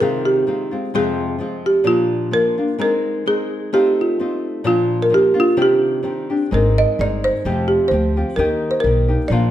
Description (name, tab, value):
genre	mexican folk, mariachi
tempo	129 BPM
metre	2/4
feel	swing 53% on 8ths, rubato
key	Eb major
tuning	A4 = 440 Hz
part	folk marimba with medium mallets	melody	0.0-9.5 s	F4 to Eb5	-17 LUFS	right 1 dB	none
part	nylon-string guitar	accompaniment	0.0-9.5 s	F2 to Bb4	-22 LUFS	left 3 dB	none
part	upright bass	bass	6.5-9.5 s	F1 to Eb2	-19 LUFS	equal	none
room	moderate recital hall reverb, RT60 1.4 s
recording	none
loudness	-15 LUFS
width	side -12 dB against mid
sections	0.0-9.5 A section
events	none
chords	0.0 Ab6/C; 0.9 Fm; 1.9 Bb; 2.8 Abadd9; 3.8 F7/A; 4.7 Bb; 5.6 Cmadd9; 6.5 Abadd9; 7.5 Fsus2; 8.4 Eb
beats	| 0.01 0.48 | 0.94 1.40 | 1.86 2.33 | 2.81 3.28 | 3.75 4.21 | 4.67 5.12 | 5.58 6.05 | 6.53 7.00 | 7.46 7.92 | 8.39 8.85 | 9.31